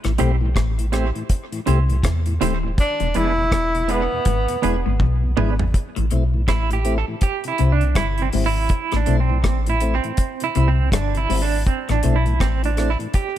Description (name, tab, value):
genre	roots reggae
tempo	81 BPM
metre	4/4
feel	swing 60% on 16ths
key	A minor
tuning	A4 = 440 Hz
part	mellow tonewheel organ	accompaniment	0.0-13.4 s	E2 to G4	-29 LUFS	left 3 dB	slow rotary speaker
part	clean electric guitar	riff	0.0-12.6 s	E2 to E3	-25 LUFS	left 4 dB	phaser
part	soft dub sub bass	bass	0.0-13.0 s	D#1 to E2	-20 LUFS	equal	none
part	deep reggae drum kit	drums	0.0-13.3 s	hi-hat, kick drum, rim click, toms	-23 LUFS	equal	none
part	semi-hollow electric guitar	accompaniment	0.2-13.4 s	B3 to C5	-25 LUFS	right 7 dB	tremolo, tape echo
part	warm tenor saxophone	melody	2.8-5.0 s	B3 to E4	-22 LUFS	equal	tape echo
room	little or no reverb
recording	none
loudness	-17 LUFS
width	side -12 dB against mid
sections	0.0-5.7 A section; 5.7-13.4 B section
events	drum fill 5.0-5.7; clean electric guitar solo 5.7-13.4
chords	0.0 Am7; 2.8 E7; 5.7 Am; 7.2 C; 8.7 Am; 10.2 C; 11.7 Am